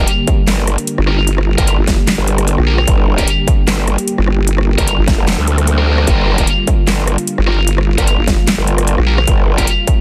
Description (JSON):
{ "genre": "heavy wobble dubstep", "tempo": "150 BPM", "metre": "4/4", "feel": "swing 54% on 16ths, half-time", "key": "G minor", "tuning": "A4 = 440 Hz", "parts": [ { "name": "lush unison pad", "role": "sustained chords", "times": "0.0-10.0 s", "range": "D3 to G4", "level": "-24 LUFS", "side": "equal", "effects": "chorus, sidechain pumping" }, { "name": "heavy high-gain guitar", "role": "stabs", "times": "0.0-9.7 s", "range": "D4 to Bb4", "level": "-23 LUFS", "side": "equal", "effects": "distortion, dub echo" }, { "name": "growl bass", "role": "bass", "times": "0.0-9.7 s", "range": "F1 to D2", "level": "-17 LUFS", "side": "equal", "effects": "chorus, overdrive" }, { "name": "dubstep drum kit", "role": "drums", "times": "0.1-10.0 s", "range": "handclaps, hi-hat, rim click, snare drum", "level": "-21 LUFS", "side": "equal", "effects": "none" }, { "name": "electronic kick drum", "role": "drums", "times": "0.3-10.0 s", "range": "none", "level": "-17 LUFS", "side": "equal", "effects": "distortion" }, { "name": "vowel-sweep wobble bass", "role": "bass", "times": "1.0-9.3 s", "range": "G1 to Bb1", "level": "-16 LUFS", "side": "equal", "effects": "chorus, overdrive" } ], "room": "little or no reverb", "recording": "dense, heavily limited modern master", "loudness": "-14 LUFS", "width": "mono", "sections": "0.0-10.0 A section", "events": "none", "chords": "0.0 Gm", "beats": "0.07 0.47 0.88 | 1.27 1.68 2.08 2.48 | 2.88 3.27 3.67 4.08 | 4.47 4.88 5.28 5.67 | 6.08 6.47 6.88 7.28 | 7.67 8.07 8.47 8.88 | 9.28 9.68" }